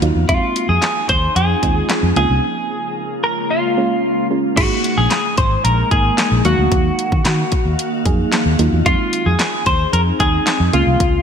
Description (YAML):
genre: dance-pop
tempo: 112 BPM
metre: 4/4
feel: straight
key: unclear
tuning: A4 = 440 Hz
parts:
  - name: soft round pluck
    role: accompaniment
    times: 0.0-11.2 s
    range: Gb3 to F5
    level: -22 LUFS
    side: right 4 dB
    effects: chorus, sidechain pumping
  - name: glassy FM pad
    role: sustained chords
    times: 0.0-11.2 s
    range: Db3 to F5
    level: -23 LUFS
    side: left 1 dB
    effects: ensemble chorus, built-in reverb, sidechain pumping
  - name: vintage muted fingered electric bass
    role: bass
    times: 0.0-11.2 s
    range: Ab1 to Eb3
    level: -18 LUFS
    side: equal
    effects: sidechain pumping
  - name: house drum kit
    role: drums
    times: 0.0-11.1 s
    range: crash cymbal, handclaps, hi-hat, kick drum, snare drum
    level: -20 LUFS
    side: equal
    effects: none
  - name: twelve-string electric guitar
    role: melody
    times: 0.3-11.2 s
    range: F4 to C5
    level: -18 LUFS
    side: left 1 dB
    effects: lush chorus, ping-pong delay
room: light reverb, digital ambience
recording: bright 1980s-style digital production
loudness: -14 LUFS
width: side -7 dB against mid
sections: 0.0-4.6 A section; 4.6-11.2 A section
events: break 2.4-4.6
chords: 0.3 Fm7; 2.2 Db6; 4.6 Absus2; 6.4 Ebmadd9; 8.9 Fm7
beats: | 0.29 0.82 1.36 1.90 | 2.43 2.97 3.50 4.04 | 4.57 5.11 5.64 6.18 | 6.72 7.25 7.79 8.32 | 8.86 9.39 9.93 10.47 | 11.00